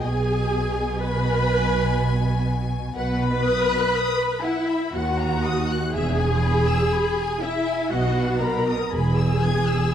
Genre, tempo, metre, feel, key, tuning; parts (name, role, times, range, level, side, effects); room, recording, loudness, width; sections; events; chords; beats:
classical, slow romantic movement for string orchestra; 61 BPM; 3/4; rubato; B major; A4 = 440 Hz
warm symphonic violin section; melody; 0.0-9.9 s; D#5 to G#6; -31 LUFS; left 6 dB
warm symphonic violin section; second line; 0.0-9.9 s; E5 to B5; -30 LUFS; left 2 dB
warm symphonic viola section; accompaniment; 0.0-9.9 s; E4 to B4; -24 LUFS; equal
dark chamber double bass section; bass; 0.0-9.8 s; E1 to D#2; -25 LUFS; right 2 dB
warm symphonic cello section; bass; 0.0-9.8 s; D#2 to B2; -28 LUFS; right 1 dB
moderate scoring stage reverb, RT60 1.6 s; dark, warm production; -20 LUFS; side -9 dB against mid
0.0-9.9 A section
0.0 G#m/B; 3.0 B; 4.9 D#m; 5.9 E; 7.9 B; 8.9 E
| 0.03 1.01 1.98 | 2.97 3.96 4.94 | 5.94 6.93 7.91 | 8.92